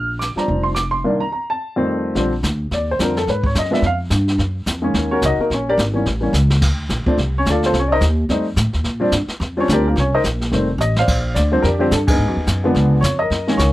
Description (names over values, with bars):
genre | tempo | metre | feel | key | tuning
jazz piano trio | 215 BPM | 4/4 | swing 59% on 8ths | Bb major | A4 = 440 Hz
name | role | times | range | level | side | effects
dark baby grand piano | melody | 0.0-13.7 s | C2 to F6 | -18 LUFS | equal | none
upright bass | bass | 0.0-13.7 s | F1 to Bb2 | -19 LUFS | equal | none
jazz brush drum kit | drums | 0.2-13.7 s | brushed snare drum, crash cymbal, hi-hat, kick drum, snare drum | -22 LUFS | equal | none
room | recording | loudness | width
little or no reverb | dry, close 1970s-style studio recording | -16 LUFS | side -16 dB against mid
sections
0.0-2.2 A section; 2.2-11.1 B section; 11.1-13.7 A section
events
grand piano solo 2.2-11.1; drum fill 6.3, 10.8; band accent 12.1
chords
0.0 Bb69; 1.0 Cm7; 1.6 F9; 2.2 Bb69; 3.3 Abm7; 3.8 Fsus2; 4.4 Gb6; 5.5 Em7b5 (rootless); 6.1 A; 6.6 Dm7; 7.7 Cm; 8.3 F7; 8.9 Bb69; 10.0 Cm7; 10.5 F9; 11.1 Bb69; 12.2 Abm7; 12.8 Db7b9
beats
0.21 0.49 0.77 | 1.05 1.32 1.60 1.88 | 2.16 2.44 2.72 3.00 | 3.27 3.55 3.83 4.11 | 4.39 4.67 4.95 5.23 | 5.50 5.78 6.06 6.34 | 6.62 6.90 7.18 7.46 | 7.74 8.02 8.30 8.57 | 8.85 9.13 9.41 9.69 | 9.97 10.25 10.53 10.80 | 11.08 11.36 11.64 11.92 | 12.20 12.48 12.76 13.03 | 13.31 13.59